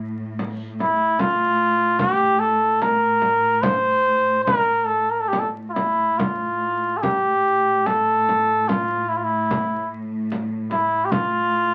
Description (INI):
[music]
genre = caucasian folk, Caucasian lament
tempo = 69-77 BPM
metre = 3/4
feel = rubato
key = A phrygian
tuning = A4 = 440 Hz
[part]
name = dark symphonic cello section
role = drone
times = 0.0-11.7 s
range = A2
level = -32 LUFS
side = equal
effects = none
[part]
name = frame drum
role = percussion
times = 0.4-11.3 s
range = none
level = -28 LUFS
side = equal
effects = none
[part]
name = trumpet with cup mute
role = melody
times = 0.8-11.7 s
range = E4 to C5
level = -21 LUFS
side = equal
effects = none
[sound]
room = moderate studio ambience, RT60 0.5 s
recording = very old 78 rpm record, vinyl crackle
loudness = -21 LUFS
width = mono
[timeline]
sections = 0.0-11.7 A section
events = none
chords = none